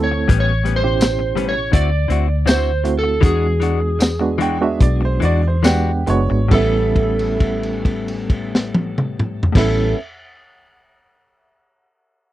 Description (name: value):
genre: straight-eighth soul blues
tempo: 67-84 BPM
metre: 4/4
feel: straight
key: A mixolydian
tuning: A4 = 440 Hz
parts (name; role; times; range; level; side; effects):
- electric slide guitar; melody; 0.0-9.9 s; G#4 to D5; -22 LUFS; right 2 dB; none
- barky reed electric piano; accompaniment; 0.0-9.9 s; B2 to F#5; -23 LUFS; right 4 dB; overdrive, fast tremolo
- vintage muted fingered electric bass; bass; 0.0-9.9 s; F#1 to E2; -19 LUFS; equal; none
- direct-recorded clean electric guitar; stabs; 0.1-10.0 s; A2 to F#4; -24 LUFS; left 7 dB; none
- crunchy breakbeat drum kit; drums; 0.3-9.8 s; crash cymbal, hi-hat, kick drum, snare drum, tambourine, toms; -18 LUFS; equal; none
- clear upright piano; second line; 4.4-10.0 s; G4 to G5; -26 LUFS; right 3 dB; none
room: little or no reverb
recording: dry, close 1970s-style studio recording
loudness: -15 LUFS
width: side -14 dB against mid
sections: 0.0-6.5 A section; 6.5-10.1 B section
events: slowing down 0.3-6.5; held note 6.5-9.5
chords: 0.3 A9; 1.7 D9; 3.2 E9; 6.5 A9